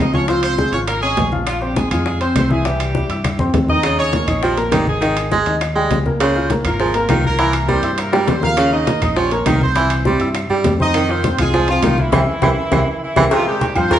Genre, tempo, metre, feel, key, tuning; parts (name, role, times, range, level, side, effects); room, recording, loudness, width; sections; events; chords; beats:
latin, salsa; 203 BPM; 4/4; straight; A4 = 440 Hz
bright horn section; melody; 0.0-14.0 s; E3 to F5; -21 LUFS; right 1 dB
warm upright piano; accompaniment; 0.0-14.0 s; Eb3 to F6; -22 LUFS; left 2 dB
fingered electric bass; bass; 0.0-14.0 s; Ab1 to G2; -22 LUFS; equal
bongos and cowbell; percussion; 0.1-14.0 s; -24 LUFS; left 4 dB
congas; percussion; 0.1-14.0 s; -24 LUFS; left 1 dB
timbales and agogo bells; percussion; 0.3-14.0 s; -26 LUFS; right 3 dB
claves; percussion; 0.4-13.9 s; -31 LUFS; right 3 dB
bright baritone saxophone; second line; 3.8-14.0 s; C3 to Ab3; -20 LUFS; right 3 dB
wet large studio reverb, RT60 1.0 s; band playing live in one room, nothing above 10.9 kHz; -14 LUFS; side -11 dB against mid
0.0-3.8 A section; 3.8-13.3 B section
drum fill 3.2-3.8, 8.1-8.6; band accent 12.1-13.3
0.3 Db; 1.5 Bbsus2; 2.7 C; 3.8 Eb7; 5.0 Ab5; 6.2 Db6; 7.4 C7; 8.6 Eb7; 9.8 C; 10.9 Fm7; 12.1 C; 13.3 Fmadd9
| 0.28 0.58 0.88 1.17 | 1.47 1.76 2.06 2.35 | 2.65 2.95 3.24 3.54 | 3.84 4.13 4.43 4.72 | 5.02 5.32 5.61 5.91 | 6.21 6.50 6.80 7.09 | 7.39 7.69 7.98 8.28 | 8.57 8.87 9.17 9.46 | 9.76 10.06 10.35 10.65 | 10.95 11.24 11.54 11.83 | 12.13 12.43 12.72 13.02 | 13.32 13.61 13.91